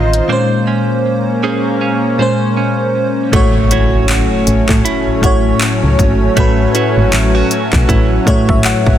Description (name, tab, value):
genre	contemporary R&B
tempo	79 BPM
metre	4/4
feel	swing 58% on 16ths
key	unclear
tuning	A4 = 440 Hz
part	FM electric piano with soft pad layer	accompaniment	0.0-9.0 s	A2 to F#5	-15 LUFS	left 1 dB	chorus, tremolo
part	lush unison pad	sustained chords	0.0-9.0 s	Eb3 to C5	-18 LUFS	left 1 dB	chorus, sidechain pumping
part	direct-recorded clean electric guitar	arpeggios	0.0-9.0 s	A3 to Eb5	-20 LUFS	right 6 dB	digital delay
part	solid FM bass	bass	0.0-9.0 s	Ab1 to A2	-14 LUFS	equal	none
part	trap drum kit	drums	0.1-9.0 s	handclaps, hi-hat, kick drum	-15 LUFS	equal	none
part	impact	sound effects	3.3-6.4 s	none	-23 LUFS	equal	none
room	little or no reverb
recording	dense, heavily limited modern master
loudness	-10 LUFS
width	side -11 dB against mid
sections	0.0-3.3 A section; 3.3-9.0 B section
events	impact 3.3-6.4; FM electric piano fill 7.9-9.0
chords	0.3 Bbm9; 3.3 A6